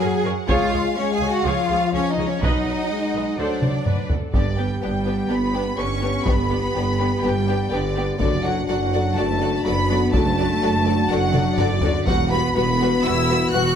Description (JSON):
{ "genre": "cinematic, epic orchestral film score", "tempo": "124 BPM", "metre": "4/4", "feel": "straight", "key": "unclear", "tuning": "A4 = 441 Hz", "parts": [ { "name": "warm symphonic violin section", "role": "melody", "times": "0.0-13.8 s", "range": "D5 to F#6", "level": "-26 LUFS", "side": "left 1 dB", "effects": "none" }, { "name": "warm symphonic violin section", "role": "second line", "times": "0.0-13.6 s", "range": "F#4 to G#5", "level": "-28 LUFS", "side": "left 2 dB", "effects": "none" }, { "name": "rich symphonic viola section", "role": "accompaniment", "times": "0.0-13.6 s", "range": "F#3 to D#5", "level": "-30 LUFS", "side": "right 1 dB", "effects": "none" }, { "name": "mellow French horn section", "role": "sustained chords", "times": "0.0-13.8 s", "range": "E#3 to G4", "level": "-25 LUFS", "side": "left 5 dB", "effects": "none" }, { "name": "rich symphonic cello section", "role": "bass", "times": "0.0-13.8 s", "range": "D3 to G#4", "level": "-26 LUFS", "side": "right 2 dB", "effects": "none" }, { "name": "rich symphonic double bass section", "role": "bass", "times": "0.0-13.8 s", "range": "E1 to F#2", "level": "-25 LUFS", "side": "right 4 dB", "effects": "none" }, { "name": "taiko ensemble", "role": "drums", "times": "0.5-12.5 s", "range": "none", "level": "-23 LUFS", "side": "equal", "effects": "none" } ], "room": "light reverb", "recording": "none", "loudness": "-18 LUFS", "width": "side -8 dB against mid", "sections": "0.0-4.3 A section; 4.3-13.8 B section", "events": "drum fill 3.6-4.3, 11.3-12.1", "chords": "0.5 C#; 2.4 B; 3.4 D7; 4.3 G; 8.2 D/F#; 12.1 Emadd9", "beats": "0.00 | 0.48 0.96 1.45 1.93 | 2.41 2.89 3.38 3.86 | 4.34 4.82 5.30 5.79 | 6.27 6.75 7.23 7.72 | 8.20 8.68 9.17 9.65 | 10.13 10.62 11.10 11.59 | 12.07 12.55 13.04 13.53" }